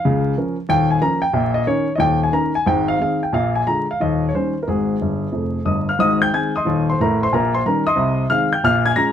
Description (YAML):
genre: jazz, stride piano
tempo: 182 BPM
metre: 4/4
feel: swing 66% on 8ths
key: Ab major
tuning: A4 = 440 Hz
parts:
  - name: warm baby grand piano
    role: solo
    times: 0.0-9.1 s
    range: Eb1 to Bb6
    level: -16 LUFS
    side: left 1 dB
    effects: none
room: moderate club reverb, RT60 0.8 s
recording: close, detailed microphones, vinyl crackle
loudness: -16 LUFS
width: side -9 dB against mid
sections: 0.0-6.0 A section; 6.0-9.1 A section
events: grand piano fill 5.0-6.0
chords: 0.0 Bbm/Db; 0.7 Ebsus2; 1.4 Eb5/Bb; 2.0 Eb5; 2.7 Ab; 3.3 Bb7; 4.0 Eb7; 4.7 Ab5; 6.0 Ab; 7.3 Eb7/Bb; 8.0 Ab/C; 8.6 Bbm7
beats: 0.04 0.36 | 0.70 1.03 1.36 1.69 | 2.02 2.35 2.68 3.01 | 3.34 3.67 4.00 4.33 | 4.66 4.99 5.32 5.65 | 5.97 6.30 6.63 6.96 | 7.29 7.62 7.95 8.28 | 8.61 8.94